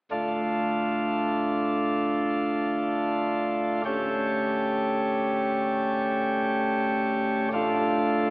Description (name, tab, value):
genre	classical, chorale-style piece for pipe organ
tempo	free time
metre	none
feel	none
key	D minor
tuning	A4 = 438 Hz
part	chamber organ, principal chorus	solo	0.1-8.3 s	D1 to G4	-23 LUFS	equal	none
room	wet concert hall reverb, RT60 2.1 s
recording	AM radio sound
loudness	-23 LUFS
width	side -27 dB against mid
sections	0.1-8.3 A section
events	none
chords	0.1 Dm; 3.9 A7/D; 7.5 Dm/A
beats	free time